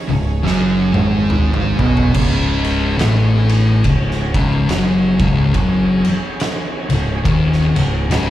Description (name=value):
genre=stoner and doom metal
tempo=71 BPM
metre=4/4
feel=swing 59% on 8ths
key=unclear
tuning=A4 = 440 Hz
part: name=overdriven tonewheel organ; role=sustained chords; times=0.0-8.3 s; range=C#4 to C#5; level=-29 LUFS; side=right 4 dB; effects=slow rotary speaker, chorus vibrato
part: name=thick fuzz guitar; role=riff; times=0.1-8.3 s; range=C#2 to B3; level=-16 LUFS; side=left 2 dB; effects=distortion
part: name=thick fuzz guitar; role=riff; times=0.1-2.1 s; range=C#2 to B3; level=-21 LUFS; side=right 10 dB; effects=distortion
part: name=growling picked electric bass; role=bass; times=0.1-8.3 s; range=C#1 to B1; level=-19 LUFS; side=right 1 dB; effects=overdrive
part: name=oversized low-tuned drum kit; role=drums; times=0.5-8.3 s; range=crash cymbal, kick drum, ride cymbal, snare drum, toms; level=-20 LUFS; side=right 1 dB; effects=none
room=light reverb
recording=live gig heard through the venue's PA, club reverb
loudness=-13 LUFS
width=side -13 dB against mid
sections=0.0-2.2 A section; 2.2-8.3 B section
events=drum fill 0.5-2.2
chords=0.0 C#5